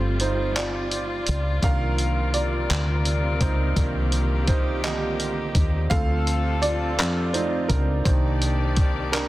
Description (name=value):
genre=slow six-eight R&B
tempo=56 BPM (dotted quarters)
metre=6/8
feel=straight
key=C dorian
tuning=A4 = 439 Hz
part: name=warm grand piano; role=accompaniment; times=0.0-9.3 s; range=D3 to F5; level=-27 LUFS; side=right 3 dB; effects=none
part: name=rich studio string section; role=sustained chords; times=0.0-9.3 s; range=C3 to D5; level=-32 LUFS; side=left 2 dB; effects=none
part: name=deep dub fingered electric bass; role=bass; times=0.0-9.3 s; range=G1 to F2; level=-25 LUFS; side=equal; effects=none
part: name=dusty soul sampler-style drum kit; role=drums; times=0.2-9.3 s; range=handclaps, hi-hat, kick drum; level=-24 LUFS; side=equal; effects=none
part: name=warm horn section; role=stabs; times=1.6-9.3 s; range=Eb3 to Bb4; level=-33 LUFS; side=left 5 dB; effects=none
room=small room ambience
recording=dense, heavily limited modern master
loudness=-21 LUFS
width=side -16 dB against mid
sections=0.0-9.3 A section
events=break 0.0-1.6; grand piano solo 0.0-9.3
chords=0.0 G9sus4; 1.6 Cm11; 5.9 Dm7; 8.1 Cm9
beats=0.55 | 1.63 2.70 | 3.77 4.84 | 5.91 6.98 | 8.05 9.13